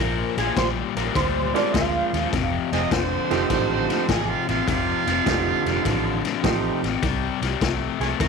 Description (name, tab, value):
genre	electric blues shuffle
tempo	102 BPM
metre	4/4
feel	swing 67% on 8ths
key	F mixolydian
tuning	A4 = 436 Hz
part	electric guitar through a small old amp	melody	0.0-4.0, 8.0-8.3 s	Ab4 to F5	-26 LUFS	right 2 dB	ensemble chorus
part	cranked stack guitar	riff	0.0-8.3 s	F2 to A3	-26 LUFS	left 12 dB	overdrive
part	vintage muted fingered electric bass	bass	0.0-8.3 s	F1 to E2	-28 LUFS	right 3 dB	none
part	raw garage drum kit	drums	0.4-8.3 s	kick drum, ride cymbal, snare drum	-26 LUFS	left 4 dB	none
part	clear concert grand piano	accompaniment	1.5-6.8 s	F3 to G4	-26 LUFS	right 16 dB	none
part	overdriven harmonica	second line	2.7-6.4 s	F4 to Eb5	-26 LUFS	right 14 dB	none
room	little or no reverb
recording	1960s-style stereo with parts hard left and right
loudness	-20 LUFS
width	side -5 dB against mid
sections	0.0-8.3 A section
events	none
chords	0.0 Bb9; 2.3 F9; 7.0 C5